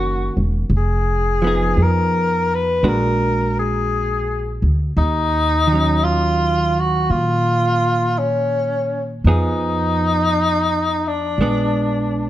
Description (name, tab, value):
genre	jazz ballad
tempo	56 BPM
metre	4/4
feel	swing 69% on 8ths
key	Eb minor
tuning	A4 = 440 Hz
part	breathy tenor saxophone	melody	0.0-12.3 s	Db4 to Cb5	-19 LUFS	left 2 dB	none
part	hollow-body jazz guitar	accompaniment	0.0-12.3 s	D#3 to Ab4	-22 LUFS	right 3 dB	none
part	upright bass	bass	0.0-12.3 s	Fb1 to Bb2	-20 LUFS	equal	none
room	light reverb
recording	close, detailed microphones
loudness	-16 LUFS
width	side -13 dB against mid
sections	0.0-12.3 A section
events	none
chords	0.0 Bmaj9 (rootless); 0.7 Fm7b5; 2.8 Bbaug7; 5.0 Ebm9; 9.3 Fm7b5; 11.4 Bb7b9